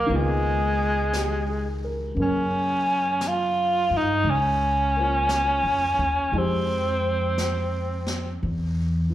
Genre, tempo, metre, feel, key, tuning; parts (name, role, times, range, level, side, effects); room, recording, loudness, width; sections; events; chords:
jazz ballad; 58 BPM; 4/4; swing 68% on 8ths; A4 = 441 Hz
breathy tenor saxophone; melody; 0.0-8.4 s; Ab3 to F4; -23 LUFS; right 1 dB; slapback echo
dark baby grand piano; accompaniment; 0.0-9.1 s; Cb3 to C5; -31 LUFS; left 2 dB; slapback echo
upright bass; bass; 0.0-9.1 s; Db2 to G2; -27 LUFS; equal
jazz brush drum kit; drums; 0.1-9.1 s; brushed snare drum, hi-hat, snare drum; -37 LUFS; left 1 dB; slapback echo
light reverb; live gig heard through the venue's PA, club reverb; -21 LUFS; side -13 dB against mid
0.0-9.1 A section
0.1 Db13; 2.2 Gbmaj7; 6.3 Fm9; 8.4 N.C.